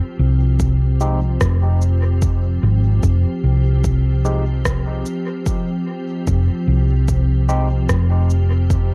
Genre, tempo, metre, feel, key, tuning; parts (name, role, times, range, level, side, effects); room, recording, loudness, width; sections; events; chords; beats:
ambient dub; 74 BPM; 4/4; swing 57% on 16ths; F minor; A4 = 440 Hz
soft additive organ-like pad; sustained chords; 0.0-8.9 s; F3 to G4; -28 LUFS; equal; ensemble chorus, built-in reverb
hollow-body short-scale fingered electric bass; bass; 0.2-8.9 s; F1 to C2; -18 LUFS; equal; tube saturation
electronic cabasa and rim click; drums; 0.6-8.9 s; -30 LUFS; equal; dub echo
electronic kick drum; drums; 0.6-8.9 s; -24 LUFS; equal; overdrive
overdriven tine electric piano; stabs; 1.0-7.7 s; Ab3 to G4; -30 LUFS; equal; phaser, dub echo
little or no reverb; echo-heavy mix; -18 LUFS; mono
0.0-8.9 A section
0.0 Fsus2
0.60 1.41 2.22 | 3.03 3.84 4.65 5.46 | 6.27 7.08 7.90 8.71